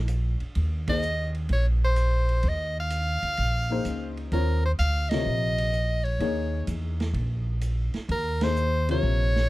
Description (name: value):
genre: modal jazz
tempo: 127 BPM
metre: 4/4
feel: swing 69% on 8ths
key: unclear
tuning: A4 = 440 Hz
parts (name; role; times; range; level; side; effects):
- dark baby grand piano; accompaniment; 0.0-9.5 s; C3 to Db5; -31 LUFS; left 5 dB; none
- upright bass; bass; 0.0-9.5 s; Bb1 to Fb2; -25 LUFS; equal; none
- vintage drum kit; drums; 0.1-9.4 s; hi-hat, kick drum, ride cymbal, snare drum; -38 LUFS; right 2 dB; none
- bright soprano saxophone; melody; 0.9-9.5 s; Bb4 to F5; -28 LUFS; equal; none
room: little or no reverb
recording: close, detailed microphones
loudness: -24 LUFS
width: side -18 dB against mid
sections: 0.0-9.5 A section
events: band accent 0.8, 5.0, 8.3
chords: 0.0 Eb13sus4